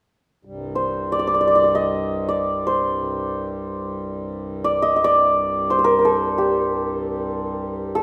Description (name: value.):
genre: indian classical, Hindustani.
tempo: free time.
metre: none.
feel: none.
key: C raga kafi.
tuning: A4 = 440 Hz.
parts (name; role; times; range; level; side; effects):
pedal harmonium; drone; 0.5-8.0 s; C2 to G2; -30 LUFS; equal; none.
santur; melody; 0.8-8.0 s; G4 to Eb5; -21 LUFS; equal; none.
room: wet recital hall reverb, RT60 1.6 s.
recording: none.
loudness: -21 LUFS.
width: mono.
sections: 0.5-8.0 A section.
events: none.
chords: none.